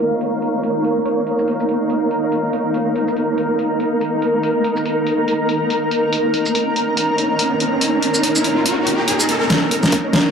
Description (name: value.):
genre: deep dubstep.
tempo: 142 BPM.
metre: 4/4.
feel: swing 57% on 16ths, half-time.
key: unclear.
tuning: A4 = 440 Hz.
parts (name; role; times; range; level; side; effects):
granular cloud pad; sustained chords; 0.0-10.3 s; Eb4 to Bb5; -18 LUFS; right 1 dB; built-in reverb, vintage 12-bit sampler grit.
deep house drum kit; drums; 0.0-10.2 s; hi-hat, shaker, snare drum; -20 LUFS; equal; low-pass filter on hats, low-pass filter on perc, low-pass filter on snare, low-pass filter on room.
flickering grainy texture; texture; 0.0-10.3 s; Bb3 to Db5; -22 LUFS; equal; built-in reverb.
riser; sound effects; 7.0-10.3 s; none; -22 LUFS; equal; none.
electronic kick drum; drums; 9.5-10.0 s; none; -22 LUFS; equal; overdrive, high-pass filter on kick.
room: wet digital room reverb, RT60 1.0 s.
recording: dry, gritty hardware recording, low-pass filter.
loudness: -16 LUFS.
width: side -6 dB against mid.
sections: 0.0-9.5 A section.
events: filter sweep on drum 0.0-9.5; filter sweep on ambient pad 0.0-9.5; filter sweep 0.0-9.5; riser 7.0-9.5, 9.5-10.3; drum fill 9.5-10.3.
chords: 0.0 Eb5.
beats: 0.21 0.63 | 1.05 1.48 1.90 2.32 | 2.75 3.17 3.59 4.01 | 4.43 4.86 5.28 5.70 | 6.12 6.55 6.97 7.39 | 7.82 8.24 8.66 9.08 | 9.51 9.93.